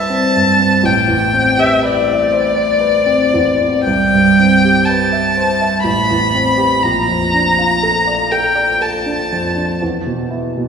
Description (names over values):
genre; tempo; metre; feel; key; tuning
classical, impressionist duo for violin and grand piano; 60 BPM; 3/4; rubato; A minor; A4 = 440 Hz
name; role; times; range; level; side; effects
rich violin; melody; 0.0-9.8 s; D5 to B5; -14 LUFS; left 2 dB; none
clear grand piano; accompaniment; 0.0-10.7 s; A1 to E5; -15 LUFS; right 1 dB; none
room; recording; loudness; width
wet church reverb, RT60 2.8 s; recorded in a church or concert hall; -12 LUFS; side -6 dB against mid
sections
0.0-10.7 A section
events
none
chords
0.0 Cmaj7sus2; 0.8 Am11; 3.8 Cmaj7; 5.8 Am7; 6.8 Bbmaj7; 9.8 E5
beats
| 0.84 1.81 2.79 | 3.84 4.85 5.83 | 6.82 7.82 8.82 | 9.81